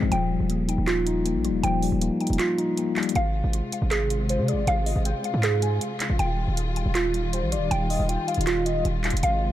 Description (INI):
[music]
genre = hip hop, trap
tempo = 158 BPM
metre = 4/4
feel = half-time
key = Eb major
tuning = A4 = 442 Hz
[part]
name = mellow tine electric piano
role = accompaniment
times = 0.0-3.2 s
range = Ab2 to F4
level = -25 LUFS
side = moving between left 8 dB and left 2 dB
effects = auto-pan, low-pass filter
[part]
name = mallet-like synth pluck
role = arpeggios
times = 0.0-9.5 s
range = F4 to G5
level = -28 LUFS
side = right 3 dB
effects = chorus, low-pass filter, ping-pong delay
[part]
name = hard-hitting 808-style bass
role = bass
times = 0.0-9.5 s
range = Eb1 to C3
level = -25 LUFS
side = equal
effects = none
[part]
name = trap drum kit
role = drums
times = 0.1-9.3 s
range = handclaps, hi-hat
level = -32 LUFS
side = right 1 dB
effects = none
[part]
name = warm symphonic string section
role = sustained chords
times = 3.2-9.5 s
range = C3 to F4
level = -30 LUFS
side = left 2 dB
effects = none
[part]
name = warm velvety synth lead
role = second line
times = 4.3-8.8 s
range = C5 to Ab5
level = -32 LUFS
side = left 3 dB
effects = chorus, ping-pong delay
[sound]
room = digital ambience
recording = dark, warm production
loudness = -22 LUFS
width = side -12 dB against mid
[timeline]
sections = 0.0-3.2 A section; 3.2-9.5 B section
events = kick muted 2.4-3.2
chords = 0.1 Ebadd9; 3.2 Ab6; 6.2 Ebadd9